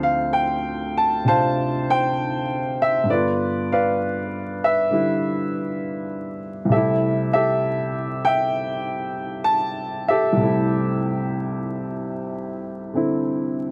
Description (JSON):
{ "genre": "solo jazz", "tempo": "65 BPM", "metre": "4/4", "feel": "swing 68% on 8ths, rubato", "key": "C major", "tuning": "A4 = 438 Hz", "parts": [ { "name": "warm baby grand piano", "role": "solo", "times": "0.0-13.7 s", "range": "C2 to A5", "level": "-22 LUFS", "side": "equal", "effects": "none" } ], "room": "light reverb", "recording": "dark, warm production, vinyl crackle", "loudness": "-22 LUFS", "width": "mono", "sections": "0.0-13.7 A section", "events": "none", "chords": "0.0 Dm7; 3.1 G7; 6.7 C6", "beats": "0.32 1.25 2.17 | 3.09 4.00 4.90 5.80 | 6.71 7.62 8.54 9.46 | 10.39 11.33 12.28 13.25" }